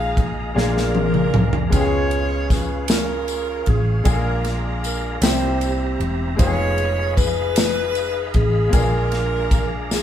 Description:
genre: slow gospel.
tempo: 51 BPM (dotted quarters).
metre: 6/8.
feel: straight.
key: unclear.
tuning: A4 = 441 Hz.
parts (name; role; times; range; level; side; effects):
warm saxophone section; melody; 0.0-10.0 s; D4 to F5; -24 LUFS; equal; none.
bright grand piano; accompaniment; 0.0-10.0 s; Bb2 to Ab4; -26 LUFS; left 2 dB; none.
tonewheel organ; sustained chords; 0.0-10.0 s; G4 to Cb6; -31 LUFS; right 1 dB; fast rotary speaker, chorus vibrato.
hollow-body short-scale fingered electric bass; bass; 0.0-10.0 s; E1 to Db2; -23 LUFS; equal; none.
modern studio drum kit; drums; 0.2-10.0 s; kick drum, ride cymbal, snare drum, toms; -20 LUFS; equal; none.
tambourine; percussion; 1.7-10.0 s; none; -32 LUFS; left 6 dB; none.
room: moderate studio reverb, RT60 0.8 s.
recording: band playing live in one room.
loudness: -17 LUFS.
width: side -10 dB against mid.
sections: 0.0-10.0 A section.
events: drum fill 0.6-1.7.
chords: 0.0 Bb7sus4; 0.6 Bb7; 1.7 Db7; 4.1 Bb7; 5.2 C7; 6.4 Fm7b5; 8.7 Bb7.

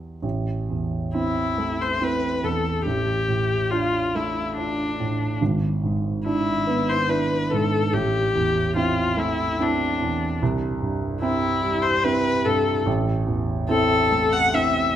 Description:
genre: classical, romantic duo for viola and grand piano.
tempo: 72 BPM.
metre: 3/4.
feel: rubato.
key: A minor.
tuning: A4 = 439 Hz.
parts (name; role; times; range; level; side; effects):
warm baby grand piano; accompaniment; 0.0-15.0 s; G#1 to F4; -23 LUFS; right 2 dB; none.
clear viola; melody; 1.2-15.0 s; D4 to F#5; -23 LUFS; left 3 dB; none.
room: moderate recital hall reverb, RT60 1.4 s.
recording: none.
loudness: -20 LUFS.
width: side -10 dB against mid.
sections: 0.2-15.0 A section.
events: none.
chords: 0.2 Am; 2.8 Dm/A; 5.4 E7/G#; 7.9 Am; 10.4 C; 12.9 Am.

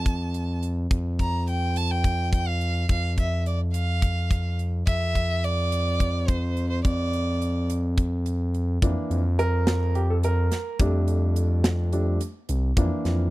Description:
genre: progressive instrumental, band music in an uneven meter.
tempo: 212 BPM (eighths).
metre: 7/8.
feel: straight.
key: F major.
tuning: A4 = 438 Hz.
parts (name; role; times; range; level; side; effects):
clear violin; melody; 0.0-7.7 s; C5 to Bb5; -30 LUFS; right 2 dB; none.
smooth gliding synth bass; bass; 0.0-13.3 s; C2 to F2; -24 LUFS; equal; none.
tight metal drum kit; drums; 0.1-13.2 s; hi-hat, kick drum, snare drum; -24 LUFS; equal; none.
clear concert grand piano; accompaniment; 8.8-13.3 s; E3 to Bb4; -28 LUFS; right 1 dB; none.
room: little or no reverb.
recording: dry, close 1970s-style studio recording.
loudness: -22 LUFS.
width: side -18 dB against mid.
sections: 0.0-8.8 A section; 8.8-13.3 B section.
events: grand piano solo 8.8-13.3.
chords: 0.0 N.C.; 8.8 Fsus4; 10.8 F6; 12.8 C7/F (rootless).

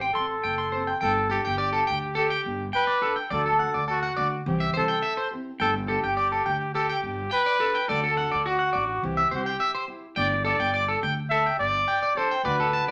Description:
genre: highlife.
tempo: 105 BPM.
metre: 4/4.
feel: straight.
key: G major.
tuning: A4 = 440 Hz.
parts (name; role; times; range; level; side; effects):
dark trumpet; melody; 0.0-12.9 s; F#4 to E5; -29 LUFS; equal; none.
fingerpicked steel-string acoustic guitar; accompaniment; 0.0-12.9 s; E3 to G4; -38 LUFS; equal; none.
electric guitar at the edge of break-up; arpeggios; 0.0-12.9 s; F#4 to C6; -28 LUFS; equal; phaser.
upright bass; bass; 0.0-12.9 s; F#1 to D2; -36 LUFS; equal; none.
room: wet studio reverb, RT60 0.8 s.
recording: none.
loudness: -25 LUFS.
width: mono.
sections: 0.0-1.0 A section; 1.0-12.9 B section.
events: none.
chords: 0.0 F#dim; 1.0 Gsus2; 3.3 D; 4.5 C; 5.6 Gsus2; 7.9 D; 9.0 C; 10.2 Gsus2.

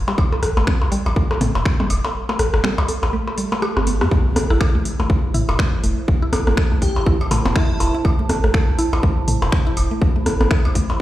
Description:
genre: minimal techno.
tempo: 122 BPM.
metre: 4/4.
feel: swing 59% on 16ths.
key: A minor.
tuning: A4 = 442 Hz.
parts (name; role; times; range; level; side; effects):
punchy sub bass; bass; 0.0-11.0 s; E1 to A2; -20 LUFS; equal; sidechain pumping.
mallet-like synth pluck; riff; 0.1-10.8 s; G3 to A4; -27 LUFS; equal; chorus, phaser, sidechain pumping, tape echo.
electronic percussion blips and rim click; percussion; 0.1-11.0 s; none; -23 LUFS; left 1 dB; overdrive, dub echo.
electronic kick drum; drums; 0.2-10.9 s; none; -18 LUFS; equal; overdrive.
booming analog drum machine; drums; 0.4-10.9 s; finger snaps, hi-hat, rim click; -28 LUFS; equal; none.
swell and impact; sound effects; 3.3-6.1 s; none; -27 LUFS; equal; none.
warbly tape-like pad; texture; 4.8-11.0 s; E4 to B5; -30 LUFS; right 5 dB; chorus, built-in reverb, sidechain pumping.
airy dreamy lead; melody; 6.8-7.9 s; E4 to G4; -28 LUFS; left 1 dB; chorus, dub echo.
room: light reverb.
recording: played on a big sound system in a bare room, large studio reverb.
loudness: -16 LUFS.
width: side -14 dB against mid.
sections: 0.0-4.1 A section; 4.1-11.0 B section.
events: kick drops out 2.1-4.1; swell 3.3-4.1; drum fill 3.6-4.1; drop 4.1-11.0; impact 4.1-6.1.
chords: 0.0 N.C.; 4.1 Am.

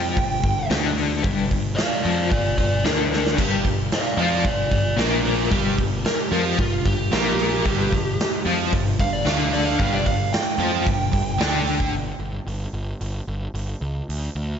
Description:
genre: quiet-loud alternative rock.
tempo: 112 BPM.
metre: 4/4.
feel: straight.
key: unclear.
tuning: A4 = 440 Hz.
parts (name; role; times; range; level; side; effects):
biting lead guitar; melody; 0.0-11.9 s; D4 to G5; -25 LUFS; right 1 dB; overdrive, slapback echo.
crunchy overdriven guitar; riff; 0.0-11.9 s; G2 to F4; -25 LUFS; left 6 dB; tremolo, slapback echo.
fuzz picked electric bass; bass; 0.0-14.5 s; G1 to F2; -27 LUFS; equal; overdrive.
big rock drum kit; drums; 0.2-14.2 s; crash cymbal, hi-hat, kick drum, snare drum; -24 LUFS; equal; none.
distorted electric guitar; riff; 3.4-11.9 s; G2 to F4; -28 LUFS; right 10 dB; overdrive, slapback echo.
room: moderate lush hall reverb, RT60 1.9 s, studio reverb.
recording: big arena sound, nothing above 7.7 kHz.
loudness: -19 LUFS.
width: side -8 dB against mid.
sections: 0.0-11.9 A section; 11.9-14.6 B section.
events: lead electric guitar solo 0.0-11.9; drum fill 3.1.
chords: 0.0 G5; 11.9 N.C..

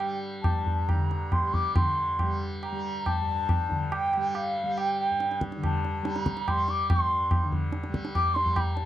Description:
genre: indian classical, Hindustani.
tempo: 140 BPM.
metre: 3/4.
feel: straight.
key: G raga bhimpalasi.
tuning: A4 = 440 Hz.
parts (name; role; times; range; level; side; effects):
bansuri; melody; 0.0-8.9 s; F5 to D6; -28 LUFS; equal; none.
tanpura; drone; 0.0-8.9 s; G2 to G3; -34 LUFS; left 1 dB; none.
tabla; percussion; 0.0-8.9 s; none; -28 LUFS; equal; none.
room: moderate small room reverb, RT60 0.6 s.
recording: dark, warm production.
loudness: -25 LUFS.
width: side -12 dB against mid.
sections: 0.0-1.8 A section; 1.8-8.9 B section.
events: speeding up 0.0-8.9.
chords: none.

